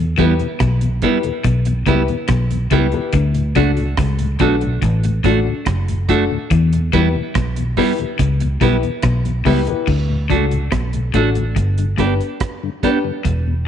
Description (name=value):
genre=roots reggae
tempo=71 BPM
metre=4/4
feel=straight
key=E dorian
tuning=A4 = 435 Hz
part: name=mellow tonewheel organ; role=accompaniment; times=0.0-13.5 s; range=D2 to E4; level=-26 LUFS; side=left 7 dB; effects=chorus vibrato, slow rotary speaker
part: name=vintage muted fingered electric bass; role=bass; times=0.0-13.7 s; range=E1 to E2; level=-18 LUFS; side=equal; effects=none
part: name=clean electric guitar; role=accompaniment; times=0.2-13.0 s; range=G3 to G4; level=-22 LUFS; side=right 10 dB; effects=none
part: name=electric guitar at the edge of break-up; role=riff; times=0.2-13.5 s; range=E2 to E3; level=-23 LUFS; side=left 6 dB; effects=none
part: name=dark upright piano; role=stabs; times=0.2-13.0 s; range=D4 to B4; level=-24 LUFS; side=left 9 dB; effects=none
part: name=deep reggae drum kit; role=drums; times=0.2-13.5 s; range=crash cymbal, hi-hat, kick drum, rim click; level=-23 LUFS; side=right 3 dB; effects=none
room=light reverb, studio reverb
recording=1960s-style stereo with parts hard left and right, nothing above 10.6 kHz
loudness=-15 LUFS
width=side -9 dB against mid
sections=0.0-9.9 A section; 9.9-13.7 B section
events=none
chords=0.0 Em; 3.1 D; 6.5 Em; 9.9 D; 11.6 G